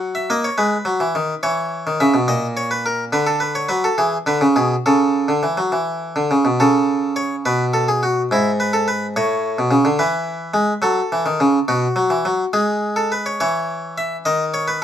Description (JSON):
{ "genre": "classical, baroque-style two-part invention for harpsichord", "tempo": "70 BPM (dotted quarters)", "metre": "6/8", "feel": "straight", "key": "A major from 3.1 s", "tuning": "A4 = 442 Hz", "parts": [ { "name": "harpsichord", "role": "solo", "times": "0.0-14.8 s", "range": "G#2 to F#5", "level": "-16 LUFS", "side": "equal", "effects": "none" } ], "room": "light reverb", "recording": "minimal, uncompressed stereo recording", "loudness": "-16 LUFS", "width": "side -10 dB against mid", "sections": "0.0-6.6 A section; 6.6-13.4 B section; 13.4-14.8 C section", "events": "none", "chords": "0.0 F#7; 0.6 G#m; 1.4 C#m/E; 2.3 A#madd11; 3.1 Bm7/D; 4.0 E7; 4.8 A/C#; 7.5 B5; 8.3 E/G#; 9.2 A; 10.0 E; 10.8 F#m7; 11.7 B5; 12.5 G#madd11; 13.4 C#m/E; 14.3 Badd9/D#", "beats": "0.58 | 1.43 2.28 | 3.12 3.98 | 4.84 5.72 | 6.59 7.46 | 8.31 9.15 | 9.99 10.83 | 11.67 12.53 | 13.40 14.25" }